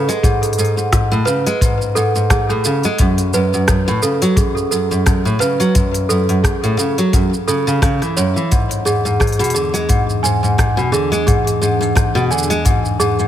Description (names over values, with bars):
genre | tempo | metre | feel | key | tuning
folktronica | 87 BPM | 4/4 | swing 56% on 16ths | unclear | A4 = 441 Hz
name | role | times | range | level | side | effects
worn celesta | second line | 0.0-13.3 s | G#4 to G#5 | -20 LUFS | right 2 dB | ping-pong delay
picked steel-string acoustic guitar | arpeggios | 0.0-13.3 s | F#2 to G#3 | -16 LUFS | equal | ping-pong delay
organic electronic drum kit | drums | 0.1-13.3 s | hi-hat, rim click, shaker | -22 LUFS | right 1 dB | small room ambience
kick drum | drums | 0.2-12.8 s | none | -18 LUFS | equal | small room ambience
warbly tape-like pad | sustained chords | 8.9-13.3 s | E2 to G#4 | -24 LUFS | right 1 dB | chorus, built-in reverb
room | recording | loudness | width
light reverb, small room reverb | none | -13 LUFS | side -11 dB against mid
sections
0.0-13.3 A section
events
none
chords
0.0 Amaj7(no3); 3.0 F#m; 8.5 E7